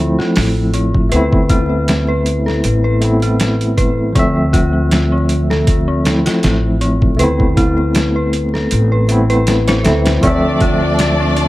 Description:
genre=trip hop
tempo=79 BPM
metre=4/4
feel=swing 55% on 16ths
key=D dorian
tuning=A4 = 439 Hz
part: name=bright tine electric piano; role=accompaniment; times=0.0-11.5 s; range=F3 to E5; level=-17 LUFS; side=equal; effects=tremolo, tape echo
part: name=dark detuned synth bell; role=arpeggios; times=0.0-11.5 s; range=C4 to C5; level=-20 LUFS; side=left 1 dB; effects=chorus, ping-pong delay
part: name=upright bass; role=bass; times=0.0-11.5 s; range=A1 to D2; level=-17 LUFS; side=equal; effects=none
part: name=boom bap sampler-style drum kit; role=drums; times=0.2-11.5 s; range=hi-hat, kick drum, snare drum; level=-17 LUFS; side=equal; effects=overdrive
part: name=warm symphonic violin section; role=sustained chords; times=10.2-11.5 s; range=D4 to D5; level=-18 LUFS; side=left 2 dB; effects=none
room=light reverb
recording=vinyl crackle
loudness=-12 LUFS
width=side -17 dB against mid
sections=0.0-11.5 A section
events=none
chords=0.0 Dm7; 1.1 Amadd9/D; 4.2 Dm7; 7.2 Amadd9/D; 10.2 Dm7

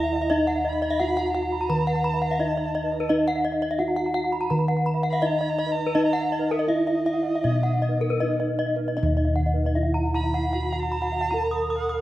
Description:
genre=Balinese gamelan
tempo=77-86 BPM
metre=4/4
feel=straight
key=Eb pelog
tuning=A4 = 438 Hz
part: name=gamelan-type bronze metallophone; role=melody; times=0.0-12.0 s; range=Eb4 to Cb5-20c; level=-28 LUFS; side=right 1 dB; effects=none
part: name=warm erhu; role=second line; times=0.0-12.0 s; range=Eb5 to Cb6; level=-33 LUFS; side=right 4 dB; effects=none
part: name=gamelan-type bronze metallophone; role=arpeggios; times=0.0-12.0 s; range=Bb4-30c to Eb6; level=-26 LUFS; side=left 2 dB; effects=none
part: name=gamelan-type bronze metallophone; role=arpeggios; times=0.0-11.9 s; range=Cb5-20c to Cb6-20c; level=-36 LUFS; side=right 7 dB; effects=none
part: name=gamelan-type bossed gongs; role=bass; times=0.0-12.0 s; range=Eb2 to Fb4+20c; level=-26 LUFS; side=equal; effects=none
room=moderate plate reverb, RT60 2.5 s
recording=rough home demo mix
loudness=-22 LUFS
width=side -15 dB against mid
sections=0.0-9.0 A section; 9.0-12.0 B section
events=none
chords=none

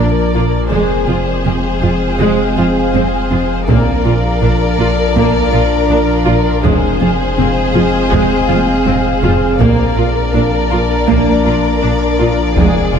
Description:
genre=cinematic, hybrid orchestral and electronic film score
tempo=81 BPM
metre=4/4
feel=straight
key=unclear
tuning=A4 = 441 Hz
part: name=warm studio violin section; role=melody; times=0.0-13.0 s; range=C5 to D5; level=-22 LUFS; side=left 4 dB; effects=none
part: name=warm symphonic violin section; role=second line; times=0.0-13.0 s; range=Ab4 to Bb4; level=-20 LUFS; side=left 3 dB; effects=none
part: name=warm symphonic viola section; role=accompaniment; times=0.0-13.0 s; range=Ab3 to F4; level=-20 LUFS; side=right 2 dB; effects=none
part: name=evolving wavetable pad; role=sustained chords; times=0.0-13.0 s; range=F3 to F5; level=-19 LUFS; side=equal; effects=chorus, built-in reverb
part: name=warm French horn section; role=sustained chords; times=0.0-13.0 s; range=F3 to D4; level=-20 LUFS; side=left 2 dB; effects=none
part: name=tight sequenced synth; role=arpeggios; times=0.0-13.0 s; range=F3 to Bb4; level=-23 LUFS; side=right 1 dB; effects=none
part: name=rich symphonic cello section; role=bass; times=0.0-13.0 s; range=F2 to Bb2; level=-20 LUFS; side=right 3 dB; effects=none
part: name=warm sub bass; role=bass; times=0.0-13.0 s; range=F1 to Bb1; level=-20 LUFS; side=equal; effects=none
part: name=warm symphonic double bass section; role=bass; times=0.0-13.0 s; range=F1 to Bb1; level=-21 LUFS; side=right 4 dB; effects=none
part: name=taiko ensemble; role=drums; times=3.7-13.0 s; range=none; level=-19 LUFS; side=equal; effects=none
room=moderate scoring stage reverb, RT60 1.6 s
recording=none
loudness=-11 LUFS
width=side -7 dB against mid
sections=0.0-13.0 A section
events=drum fill 8.5-9.6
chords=0.0 Bb; 0.7 Fm; 3.7 Bb; 6.6 Fm; 9.6 Bb

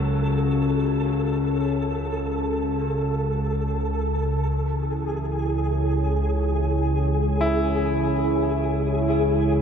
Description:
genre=dark ambient drone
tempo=free time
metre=none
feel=none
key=C# minor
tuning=A4 = 441 Hz
part: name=bright concert grand piano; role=arpeggios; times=0.0-9.6 s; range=D#2 to E4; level=-32 LUFS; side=equal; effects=diffuse ambient delay
part: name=analog drone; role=drone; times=0.0-9.6 s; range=C#2 to C#3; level=-23 LUFS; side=left 1 dB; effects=chorus
part: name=flickering grainy texture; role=texture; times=0.0-9.6 s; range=G#4 to A4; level=-29 LUFS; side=equal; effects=built-in reverb
part: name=dark analog pad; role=sustained chords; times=4.5-9.6 s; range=E4 to C#5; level=-26 LUFS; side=right 2 dB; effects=chorus
room=moderate huge ambient reverb, RT60 8.2 s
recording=none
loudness=-21 LUFS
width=side -7 dB against mid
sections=0.0-4.5 A section; 4.5-9.6 B section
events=none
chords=0.0 A/C#; 4.5 C#m

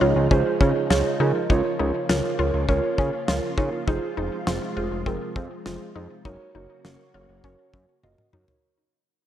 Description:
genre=synth-pop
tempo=101 BPM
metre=4/4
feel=straight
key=unclear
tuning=A4 = 440 Hz
part: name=muted felt-like synth keys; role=accompaniment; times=0.0-8.5 s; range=F4 to Eb5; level=-26 LUFS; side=right 4 dB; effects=chorus
part: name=soft string machine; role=sustained chords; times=0.0-8.6 s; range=C3 to Gb4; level=-31 LUFS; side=left 1 dB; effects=phaser, ensemble chorus
part: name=wide unison pluck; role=arpeggios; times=0.0-8.5 s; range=C4 to F4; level=-31 LUFS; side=left 6 dB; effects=tape echo
part: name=fat analog bass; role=bass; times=0.0-8.5 s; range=F1 to Db3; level=-25 LUFS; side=equal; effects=none
part: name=damped 70s drum kit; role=drums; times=0.3-8.6 s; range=kick drum, snare drum, toms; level=-25 LUFS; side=equal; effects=none
room=moderate lush hall reverb, RT60 1.9 s, studio ambience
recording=dark, warm production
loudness=-21 LUFS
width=side -11 dB against mid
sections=0.0-8.6 A section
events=fade-out 0.0-8.6; drum fill 8.0-8.6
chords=0.0 Dbadd9; 1.5 Bbm/Db; 3.9 Fm; 6.3 Gb

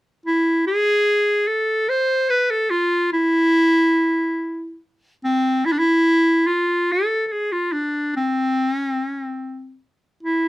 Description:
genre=klezmer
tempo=72 BPM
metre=3/4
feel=straight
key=unclear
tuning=A4 = 440 Hz
part: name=bright clarinet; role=solo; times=0.3-10.5 s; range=C4 to C5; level=-17 LUFS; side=equal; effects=none
room=light reverb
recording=close, detailed microphones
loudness=-17 LUFS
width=side -18 dB against mid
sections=0.3-10.5 A section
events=none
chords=none

